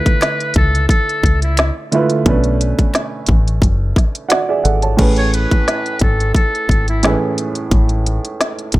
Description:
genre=hip hop, boom-bap hip-hop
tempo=88 BPM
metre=4/4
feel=swing 55% on 16ths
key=A major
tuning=A4 = 439 Hz
part: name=trumpet with metal mute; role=melody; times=0.0-7.2 s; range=E4 to C#5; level=-20 LUFS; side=equal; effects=high-pass filter, low-pass filter
part: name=dark grand piano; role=accompaniment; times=0.0-8.8 s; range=A2 to A5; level=-19 LUFS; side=right 3 dB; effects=cassette tape, high-pass filter, low-pass filter
part: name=organic electronic drum kit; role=drums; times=0.1-8.8 s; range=crash cymbal, hi-hat, kick drum, snare drum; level=-15 LUFS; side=equal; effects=none
part: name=finger snaps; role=percussion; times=0.2-4.5 s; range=none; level=-28 LUFS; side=left 4 dB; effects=none
part: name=deep dub fingered electric bass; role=bass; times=0.6-8.8 s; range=F#1 to C#2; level=-16 LUFS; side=equal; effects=none
room=small room reverb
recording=none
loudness=-13 LUFS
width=side -18 dB against mid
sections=0.0-5.0 A section; 5.0-8.8 B section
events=none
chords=0.0 Dm6; 2.3 Bm7; 5.0 Amaj7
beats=0.21 0.90 1.58 | 2.26 2.94 3.62 4.31 | 4.99 5.67 6.35 7.03 | 7.71 8.40

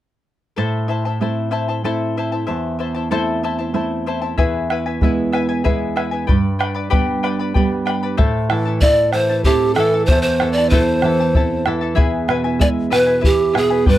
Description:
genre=andean folk, Andean ensemble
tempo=95 BPM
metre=3/4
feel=straight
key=A minor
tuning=A4 = 440 Hz
part: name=charango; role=accompaniment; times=0.6-14.0 s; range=E4 to B5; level=-23 LUFS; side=left 6 dB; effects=none
part: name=nylon-string guitar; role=accompaniment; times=0.6-14.0 s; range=E2 to E4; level=-20 LUFS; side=right 3 dB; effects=none
part: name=bombo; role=percussion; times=4.4-14.0 s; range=none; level=-17 LUFS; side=equal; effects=none
part: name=breathy polished pan flute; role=melody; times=8.8-14.0 s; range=G4 to D5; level=-16 LUFS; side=right 1 dB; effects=none
room=light reverb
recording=dry, close 1970s-style studio recording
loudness=-15 LUFS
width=side -13 dB against mid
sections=0.6-8.2 A section; 8.2-14.0 B section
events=none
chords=0.6 Am; 4.4 E; 6.3 G; 8.2 Am; 12.0 E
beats=| 0.57 1.20 1.84 | 2.48 3.11 3.75 | 4.38 5.02 5.65 | 6.29 6.92 7.55 | 8.19 8.82 9.45 | 10.08 10.71 11.34 | 11.97 12.60 13.23 | 13.86

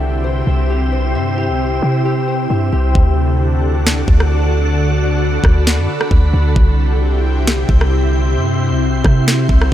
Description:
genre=hip hop, atmospheric cloud-rap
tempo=133 BPM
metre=4/4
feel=half-time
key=unclear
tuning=A4 = 440 Hz
part: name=ethereal airy pad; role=sustained chords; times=0.0-9.7 s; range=C3 to A4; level=-19 LUFS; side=equal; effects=ensemble chorus, built-in reverb, sidechain pumping
part: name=concert harp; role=arpeggios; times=0.0-5.1 s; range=D4 to E5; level=-26 LUFS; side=left 4 dB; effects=tape echo
part: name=warm 808-style bass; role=bass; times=0.0-9.7 s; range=C2 to C3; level=-15 LUFS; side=equal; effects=none
part: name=wind-like tuned noise texture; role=texture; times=0.0-9.7 s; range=C5 to G6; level=-27 LUFS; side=equal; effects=built-in reverb
part: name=trap drum kit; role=drums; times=3.0-9.7 s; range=kick drum, rim click, snare drum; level=-14 LUFS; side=equal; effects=none
room=digital ambience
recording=none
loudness=-12 LUFS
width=side -12 dB against mid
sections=0.0-3.0 A section; 3.0-9.7 B section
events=hi-hats muted 3.0-9.7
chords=0.0 C; 3.0 D; 6.6 C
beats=0.25 0.70 | 1.15 1.60 2.05 2.50 | 2.95 3.40 3.85 4.31 | 4.76 5.21 5.66 6.11 | 6.56 7.01 7.46 7.92 | 8.37 8.82 9.27 9.72

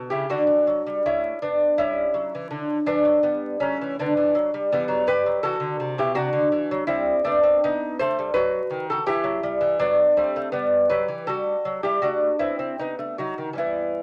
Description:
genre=classical, baroque-style dance for lute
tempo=82 BPM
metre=4/4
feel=rubato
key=E minor from 4.7 s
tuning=A4 = 445 Hz
part: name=lute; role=solo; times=0.0-14.0 s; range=B2 to C5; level=-23 LUFS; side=equal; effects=none
room=moderate small room reverb, RT60 0.5 s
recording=vinyl crackle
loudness=-23 LUFS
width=mono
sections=0.0-14.0 A section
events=none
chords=0.0 Bm; 1.8 G; 4.7 Em; 6.2 Am/C (rootless); 7.6 B7; 9.1 Em; 12.0 Am; 12.8 B7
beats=0.32 1.06 | 1.79 2.52 3.24 3.98 | 4.71 5.43 6.15 6.88 | 7.61 8.34 9.07 9.79 | 10.53 11.28 12.02 12.77 | 13.58

